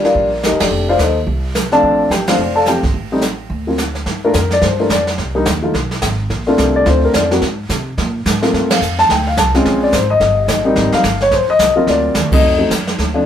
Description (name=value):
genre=jazz piano trio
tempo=215 BPM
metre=4/4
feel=swing 60% on 8ths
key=Bb major, G minor from 4.1 s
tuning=A4 = 440 Hz
part: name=dark baby grand piano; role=melody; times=0.0-13.3 s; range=F3 to A5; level=-13 LUFS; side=left 2 dB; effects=none
part: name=upright bass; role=bass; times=0.0-13.3 s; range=E1 to C3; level=-20 LUFS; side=right 1 dB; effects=none
part: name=jazz brush drum kit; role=drums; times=0.0-13.3 s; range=brushed snare drum, crash cymbal, hi-hat, kick drum, ride cymbal, snare drum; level=-18 LUFS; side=right 2 dB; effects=none
room=light reverb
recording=band playing live in one room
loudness=-12 LUFS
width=side -9 dB against mid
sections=0.0-4.1 A section; 4.1-13.0 B section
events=band accent 0.6, 2.2, 8.7, 12.3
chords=0.0 Ebmaj9; 0.7 F13; 1.8 Bbmaj9; 2.9 N.C.; 4.1 Gm7; 5.2 Cm; 5.7 Abm; 6.3 Bbmaj9; 7.4 Abadd9; 8.5 Gm11; 9.6 Bbm9; 10.2 Eb; 10.8 Abmaj7; 11.9 D7alt; 12.4 F7b9